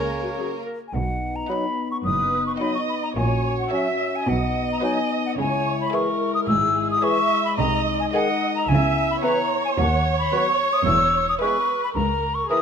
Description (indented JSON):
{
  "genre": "cinematic, playful, whimsical film cue",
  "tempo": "109 BPM",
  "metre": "4/4",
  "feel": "straight",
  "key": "B major",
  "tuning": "A4 = 440 Hz",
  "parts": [
    { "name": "rich chamber violin section", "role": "melody", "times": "0.0-12.6 s", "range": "A#4 to G#5", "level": "-37 LUFS", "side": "left 4 dB", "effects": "none" },
    { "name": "hollow concert flute", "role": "second line", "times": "0.0-12.6 s", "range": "A#4 to E6", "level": "-24 LUFS", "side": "left 2 dB", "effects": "none" },
    { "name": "mellow clarinet", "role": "second line", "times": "0.0-12.6 s", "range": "C#4 to B4", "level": "-32 LUFS", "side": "left 2 dB", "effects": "none" },
    { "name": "rich chamber violin section", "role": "second line", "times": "0.0-12.6 s", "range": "A#3 to D#5", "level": "-33 LUFS", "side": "left 2 dB", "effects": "none" },
    { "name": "warm oboe", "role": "second line", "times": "0.0-0.6 s", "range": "C#5", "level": "-35 LUFS", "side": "right 4 dB", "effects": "none" },
    { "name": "dark bassoon", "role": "accompaniment", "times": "0.0-12.6 s", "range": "C#3 to G#3", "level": "-30 LUFS", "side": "right 4 dB", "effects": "none" },
    { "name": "rich symphonic double bass section", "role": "bass", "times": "0.0-12.4 s", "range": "E1 to D#2", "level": "-27 LUFS", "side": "right 2 dB", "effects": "none" },
    { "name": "warm studio cello section", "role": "bass", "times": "0.0-12.4 s", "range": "C#2 to C#3", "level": "-27 LUFS", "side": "right 1 dB", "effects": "none" },
    { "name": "warm chamber viola section", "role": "accompaniment", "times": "0.4-12.6 s", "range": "F#3 to E5", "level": "-26 LUFS", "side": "right 5 dB", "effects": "none" },
    { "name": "mellow French horn section", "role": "sustained chords", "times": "0.4-12.6 s", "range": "G#3 to G#4", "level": "-29 LUFS", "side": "left 7 dB", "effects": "none" }
  ],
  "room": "moderate scoring stage reverb, RT60 1.8 s",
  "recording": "close, detailed microphones",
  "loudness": "-20 LUFS",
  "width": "side -7 dB against mid",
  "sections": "0.9-12.6 A section",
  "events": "none",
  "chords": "0.0 F#; 0.9 B; 3.2 F#7/A#; 4.3 B; 5.4 C#m; 7.6 G#/B#; 8.7 C#m7; 9.8 B/D#; 10.9 E; 12.0 A#dim/C#",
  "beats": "0.38 | 0.95 1.50 2.06 2.61 | 3.17 3.72 4.28 4.82 | 5.38 5.93 6.48 7.03 | 7.58 8.13 8.69 9.23 | 9.78 10.33 10.87 11.41 | 11.95 12.50"
}